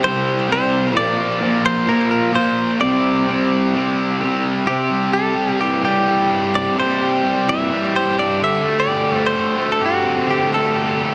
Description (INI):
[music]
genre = rock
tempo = 128 BPM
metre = 4/4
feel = straight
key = C lydian from 4.7 s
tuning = A4 = 440 Hz
[part]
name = direct-recorded clean electric guitar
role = melody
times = 0.0-11.1 s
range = F#4 to E5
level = -23 LUFS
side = equal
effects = digital delay
[part]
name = fuzz guitar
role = riff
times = 0.0-11.1 s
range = Bb2 to G4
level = -20 LUFS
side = equal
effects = distortion, subtle chorus
[sound]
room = moderate huge ambient reverb, RT60 7.3 s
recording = dense, heavily limited modern master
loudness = -18 LUFS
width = mono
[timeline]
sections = 0.0-4.7 A section; 4.7-11.1 B section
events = none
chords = 0.0 C5; 0.9 Bbsus2; 2.8 Csus2; 4.7 Cadd9; 8.4 D7sus4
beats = 0.01 0.48 | 0.94 1.41 1.87 2.33 | 2.80 3.26 3.73 4.19 | 4.66 5.12 5.59 6.06 | 6.53 6.99 7.46 7.93 | 8.40 8.87 9.34 9.80 | 10.27 10.74